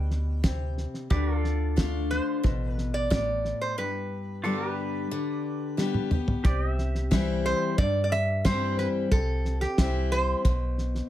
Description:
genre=honky-tonk and classic country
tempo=90 BPM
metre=4/4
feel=straight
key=C major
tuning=A4 = 440 Hz
part: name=lap resonator guitar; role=melody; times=0.0-11.1 s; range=G4 to G5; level=-30 LUFS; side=right 2 dB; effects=none
part: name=picked steel-string acoustic guitar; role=accompaniment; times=0.0-11.1 s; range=G2 to G4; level=-30 LUFS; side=left 4 dB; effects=none
part: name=pedal steel guitar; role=sustained chords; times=0.0-11.1 s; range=F4 to E5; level=-36 LUFS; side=right 2 dB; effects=none
part: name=metallic FM bass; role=bass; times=0.0-11.0 s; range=A1 to G2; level=-28 LUFS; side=equal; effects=none
part: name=cloth-damped thuddy drum kit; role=drums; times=0.1-11.0 s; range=hi-hat, kick drum, snare drum, toms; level=-26 LUFS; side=equal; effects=none
room=light reverb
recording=none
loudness=-24 LUFS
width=side -13 dB against mid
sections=0.0-6.4 A section; 6.4-11.1 B section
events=break 3.8-6.4; drum fill 5.8-6.4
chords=0.0 G; 1.1 Dm; 3.8 G; 6.4 C

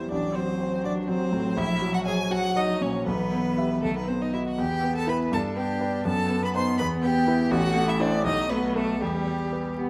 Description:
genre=quick classical-period movement for piano quartet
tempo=81 BPM (dotted quarters)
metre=6/8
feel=straight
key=E minor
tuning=A4 = 440 Hz
part: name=clear violin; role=melody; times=0.0-9.8 s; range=G4 to C6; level=-33 LUFS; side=equal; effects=none
part: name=warm cello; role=second line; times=0.0-9.9 s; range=D#3 to D4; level=-34 LUFS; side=equal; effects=none
part: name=clear grand piano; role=accompaniment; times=0.0-9.9 s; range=A1 to E5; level=-28 LUFS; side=equal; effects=none
part: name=warm violin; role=second line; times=0.1-9.8 s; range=G3 to C5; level=-34 LUFS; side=equal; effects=none
room=moderate scoring stage reverb, RT60 1.6 s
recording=close, detailed microphones, vinyl crackle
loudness=-26 LUFS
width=mono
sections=0.0-9.9 A section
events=none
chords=0.1 F#dim/A; 1.6 F#/A#; 3.1 Em/B; 3.8 B; 4.6 Em; 5.3 G; 6.1 B7/F#; 6.8 Em; 7.5 Am; 8.3 B5; 9.0 Em

